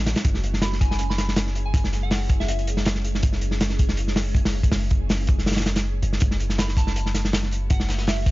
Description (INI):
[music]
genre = drum and bass, jungle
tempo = 161 BPM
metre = 4/4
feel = swing 54% on 16ths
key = unclear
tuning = A4 = 443 Hz
[part]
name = ethereal airy pad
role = sustained chords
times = 0.0-8.3 s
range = G#3 to G#4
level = -35 LUFS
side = equal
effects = ensemble chorus, built-in reverb, phaser
[part]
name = long sustained 808-style bass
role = bass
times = 0.0-8.3 s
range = F#1 to A1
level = -25 LUFS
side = equal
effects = none
[part]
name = crunchy breakbeat drum kit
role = drums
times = 0.1-8.3 s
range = hi-hat, kick drum, snare drum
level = -22 LUFS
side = equal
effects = none
[part]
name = soft synth bell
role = melody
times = 0.6-2.5, 6.6-8.3 s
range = E5 to B5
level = -34 LUFS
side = right 1 dB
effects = chorus, phaser, dub echo
[part]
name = crunchy breakbeat drum kit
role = drums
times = 6.2-8.3 s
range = hi-hat, snare drum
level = -35 LUFS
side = left 1 dB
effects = high-pass filter on hats, high-pass filter on snare, high-pass filter on room
[sound]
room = little or no reverb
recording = nothing above 7.5 kHz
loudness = -20 LUFS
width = side -18 dB against mid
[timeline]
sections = 0.0-8.3 A section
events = none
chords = 0.2 C#m/F#; 6.2 F#m7